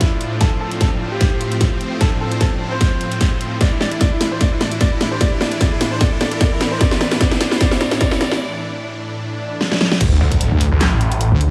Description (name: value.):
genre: heavy wobble dubstep.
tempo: 150 BPM.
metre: 4/4.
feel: swing 54% on 16ths, half-time.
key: D minor.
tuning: A4 = 440 Hz.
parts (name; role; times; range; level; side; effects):
bright concert grand piano; melody; 0.0-8.4 s; D4 to D5; -28 LUFS; equal; low-pass filter, dub echo.
supersaw chords; sustained chords; 0.0-10.0 s; A2 to D4; -26 LUFS; equal; sidechain pumping.
dubstep drum kit; drums; 0.0-11.5 s; crash cymbal, handclaps, hi-hat, snare drum; -22 LUFS; equal; none.
electronic kick drum; drums; 0.0-10.4 s; none; -20 LUFS; equal; none.
riser, swell and impact; sound effects; 1.9-11.5 s; none; -30 LUFS; equal; none.
wobble bass; bass; 10.0-11.5 s; D2; -17 LUFS; equal; chorus, overdrive.
snarling distorted saw bass; bass; 10.2-11.3 s; A1 to D2; -19 LUFS; equal; overdrive.
room: light reverb.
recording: small room ambience.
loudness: -18 LUFS.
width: mono.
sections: 0.0-10.0 A section; 10.0-11.5 B section.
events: build-up 0.0-10.0; drum fill 0.0-8.4, 9.6-10.0; break 8.4-10.0; swell 9.3-10.0; drop 10.0-11.5; impact 10.0-11.5.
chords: 0.0 Dm; 3.6 Asus4; 10.0 D5.